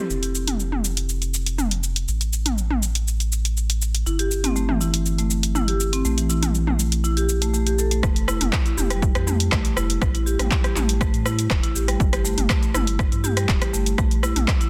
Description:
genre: afro house.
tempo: 121 BPM.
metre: 4/4.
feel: straight.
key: unclear.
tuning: A4 = 439 Hz.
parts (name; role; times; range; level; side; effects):
round analog bass; bass; 0.1-14.5 s; D1 to A2; -26 LUFS; equal; sidechain pumping.
deep house drum kit; drums; 0.1-14.7 s; cabasa, handclaps, hi-hat, rim click, toms; -28 LUFS; equal; overdrive.
marimba with medium mallets; arpeggios; 4.1-14.7 s; E3 to A4; -28 LUFS; equal; sidechain pumping, tape echo.
electronic kick drum; drums; 8.0-14.6 s; none; -24 LUFS; equal; overdrive.
room: light reverb, digital ambience.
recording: dense, heavily limited modern master.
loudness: -22 LUFS.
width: mono.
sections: 0.1-8.0 A section; 8.0-14.7 B section.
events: drop 8.0-14.7.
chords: 0.1 N.C.; 4.1 A7(no3)/G (rootless); 6.0 Gm69/Bb (rootless); 8.0 Fmaj7; 10.0 A5; 12.0 G5; 14.0 Bb5.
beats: | 0.10 0.59 1.09 1.58 | 2.08 2.58 3.07 3.57 | 4.07 4.56 5.06 5.55 | 6.05 6.54 7.04 7.54 | 8.03 8.53 9.02 9.52 | 10.02 10.51 11.01 11.50 | 12.00 12.49 12.99 13.49 | 13.98 14.48.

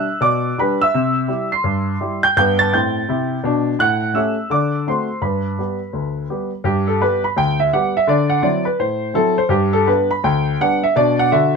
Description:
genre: jazz, stride piano.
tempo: 168 BPM.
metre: 4/4.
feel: swing 63% on 8ths.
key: G major.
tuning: A4 = 439 Hz.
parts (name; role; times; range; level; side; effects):
clear baby grand piano; solo; 0.0-11.6 s; D2 to C7; -15 LUFS; equal; none.
room: moderate booth ambience, RT60 0.2 s.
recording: none.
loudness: -16 LUFS.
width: side -5 dB against mid.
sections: 0.0-6.7 A section; 6.7-11.6 A section.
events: none.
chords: 0.0 G/B; 0.9 C; 2.4 G; 3.8 A7; 4.5 D7; 5.2 G; 8.1 D9; 9.5 G; 11.0 Bmadd11.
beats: 0.20 0.56 | 0.92 1.28 1.64 2.00 | 2.36 2.71 3.07 3.43 | 3.79 4.15 4.51 4.87 | 5.22 5.58 5.94 6.30 | 6.66 7.02 7.37 7.73 | 8.09 8.45 8.80 9.16 | 9.52 9.88 10.24 10.59 | 10.95 11.31.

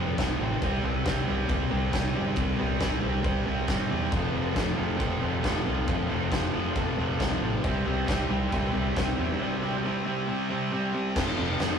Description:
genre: garage rock duo or trio.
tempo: 137 BPM.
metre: 4/4.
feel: straight.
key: F major.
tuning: A4 = 440 Hz.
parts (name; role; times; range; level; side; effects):
thick fuzz guitar; riff; 0.0-11.8 s; F2 to C4; -28 LUFS; right 1 dB; distortion.
growling fingered electric bass; bass; 0.0-11.7 s; F1 to G2; -32 LUFS; equal; overdrive.
oversized low-tuned drum kit; drums; 0.2-11.7 s; crash cymbal, kick drum, snare drum; -29 LUFS; equal; none.
combo organ; sustained chords; 4.1-11.8 s; G4 to F5; -37 LUFS; left 1 dB; none.
room: wet studio reverb, RT60 0.6 s.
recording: rough rehearsal-room recording.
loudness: -25 LUFS.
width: side -7 dB against mid.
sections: 0.0-11.2 A section.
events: none.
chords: 0.0 F; 0.6 C5; 4.1 F; 7.6 C; 11.2 F.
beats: 0.18 | 0.62 1.06 1.50 1.93 | 2.37 2.81 3.25 3.69 | 4.13 4.57 5.00 5.44 | 5.88 6.32 6.76 7.20 | 7.64 8.08 8.52 8.96 | 9.40 9.84 10.28 10.72 | 11.16 11.60.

